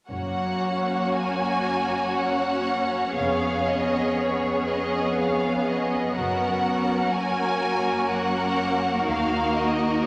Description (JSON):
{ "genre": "classical", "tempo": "60 BPM", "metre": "3/4", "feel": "uneven beats, rubato", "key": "F# major", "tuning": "A4 = 439 Hz", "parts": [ { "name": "rich studio violin section", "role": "melody", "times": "0.1-10.1 s", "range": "C#5 to G#5", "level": "-31 LUFS", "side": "equal", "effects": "none" }, { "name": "rich studio violin section", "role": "second line", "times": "0.1-10.1 s", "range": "F#4 to C#5", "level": "-29 LUFS", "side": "equal", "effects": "none" }, { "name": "rich studio viola section", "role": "accompaniment", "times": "0.1-10.1 s", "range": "A#3 to D#4", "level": "-30 LUFS", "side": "equal", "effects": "none" }, { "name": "rich chamber double bass section", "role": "bass", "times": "0.1-10.0 s", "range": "E#1 to D#2", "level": "-40 LUFS", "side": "equal", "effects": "none" }, { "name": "rich studio cello section", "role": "bass", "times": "0.1-10.1 s", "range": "D#2 to F#2", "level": "-34 LUFS", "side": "equal", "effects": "none" } ], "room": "wet scoring stage reverb, RT60 1.9 s", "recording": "none", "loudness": "-24 LUFS", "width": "mono", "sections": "0.1-10.1 A section", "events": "none", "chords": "0.1 F#; 3.2 C#7/E#; 6.2 F#; 9.1 D#m" }